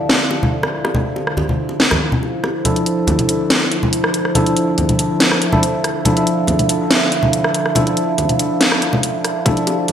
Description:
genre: deep dubstep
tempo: 141 BPM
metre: 4/4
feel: half-time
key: D minor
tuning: A4 = 440 Hz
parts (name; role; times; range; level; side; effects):
- overtone-sweeping drone; sustained chords; 0.0-9.9 s; D3 to E4; -22 LUFS; right 2 dB; chorus, built-in reverb
- garage drum kit; drums; 0.1-9.9 s; hi-hat, rim click, snare drum; -17 LUFS; equal; gated reverb
- bongos and congas; percussion; 0.1-9.9 s; none; -20 LUFS; equal; none
- tine electric piano; stabs; 2.7-9.9 s; F3 to A4; -19 LUFS; left 1 dB; medium stereo tremolo, low-pass filter, dub echo
- electronic kick drum; drums; 9.5 s; none; -18 LUFS; equal; none
room: wet lush hall reverb, RT60 1.7 s, digital ambience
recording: bright 1980s-style digital production, high-pass filter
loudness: -14 LUFS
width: side -9 dB against mid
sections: 0.0-2.6 A section; 2.6-9.9 B section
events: build-up 2.6-9.9; filter sweep on tine electric piano 2.6-9.9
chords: 0.0 Dmadd9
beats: 0.10 0.52 | 0.95 1.37 1.80 2.22 | 2.65 3.08 3.50 3.93 | 4.35 4.78 5.20 5.63 | 6.05 6.48 6.91 7.33 | 7.76 8.18 8.61 9.03 | 9.46 9.88

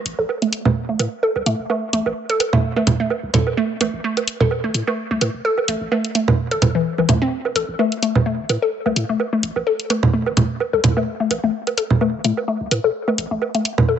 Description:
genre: minimal techno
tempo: 128 BPM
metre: 4/4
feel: swing 55% on 16ths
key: A minor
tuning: A4 = 442 Hz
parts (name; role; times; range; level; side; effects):
- punchy sub bass; bass; 0.1-14.0 s; E1 to A2; -28 LUFS; left 1 dB; high-pass filter
- electronic hi-hat; drums; 0.1-13.8 s; none; -22 LUFS; left 2 dB; none
- hollow square pluck; riff; 0.2-13.9 s; E3 to A4; -21 LUFS; left 2 dB; chorus, dub echo
- woodblock and congas; percussion; 0.3-13.9 s; none; -19 LUFS; right 4 dB; overdrive
room: light reverb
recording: nothing above 8.0 kHz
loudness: -17 LUFS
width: side -8 dB against mid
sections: 0.0-14.0 A section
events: none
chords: 0.0 A5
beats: 0.29 0.76 1.23 | 1.70 2.17 2.63 3.10 | 3.57 4.04 4.51 4.98 | 5.45 5.92 6.38 6.85 | 7.32 7.79 8.26 8.73 | 9.20 9.67 10.13 10.60 | 11.07 11.54 12.01 12.48 | 12.95 13.42 13.88

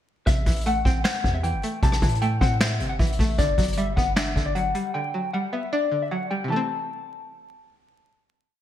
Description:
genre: hip hop, trap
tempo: 154 BPM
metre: 4/4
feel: half-time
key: A dorian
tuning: A4 = 440 Hz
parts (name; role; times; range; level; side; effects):
- mellow electric guitar; melody; 0.3-7.6 s; D5 to A5; -28 LUFS; left 4 dB; lush chorus, low-pass filter
- string-like resonator pluck; accompaniment; 0.3-8.6 s; C3 to C5; -28 LUFS; right 1 dB; chorus, low-pass filter
- hard-hitting 808-style bass; bass; 0.3-4.7 s; G1 to A2; -26 LUFS; equal; none
- vintage brush drum kit; drums; 0.3-4.8 s; finger snaps, hi-hat, kick drum, rim click, snare drum; -23 LUFS; equal; gated reverb
room: light reverb, studio reverb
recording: bright 1980s-style digital production, vinyl crackle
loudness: -21 LUFS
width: side -11 dB against mid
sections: 0.3-6.5 hook; 6.5-8.6 final chord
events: none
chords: 0.3 Am; 3.4 Gmaj7; 6.5 Am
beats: | 0.27 0.66 1.05 1.44 | 1.83 2.22 2.61 3.00 | 3.38 3.77 4.16 4.55 | 4.94 5.33 5.72 6.11 | 6.50 6.89 7.28 7.67 | 8.06 8.45

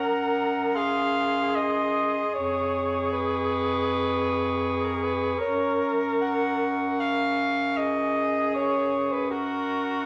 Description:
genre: classical, lyrical piece for single-reed quartet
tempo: 68-82 BPM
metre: 4/4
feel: rubato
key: F# major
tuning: A4 = 441 Hz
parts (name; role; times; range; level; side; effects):
- clear clarinet; melody; 0.0-10.1 s; A#5 to C#6; -36 LUFS; equal; none
- warm alto saxophone; second line; 0.0-10.1 s; A#4 to F#5; -30 LUFS; equal; none
- warm tenor saxophone; accompaniment; 0.0-10.1 s; F#4 to A#4; -31 LUFS; equal; none
- clear bass clarinet; bass; 0.0-10.1 s; E#2 to F#2; -32 LUFS; equal; none
room: wet large studio reverb, RT60 0.8 s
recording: nothing above 10.7 kHz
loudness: -26 LUFS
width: mono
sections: 0.0-10.1 A section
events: none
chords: 0.0 F#; 0.8 G#7/F#; 2.3 C#7/E#; 5.4 F#; 7.0 C#/F#; 8.5 F#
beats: 0.76 1.55 | 2.34 3.12 3.89 4.65 | 5.39 6.21 6.99 7.76 | 8.54 9.30

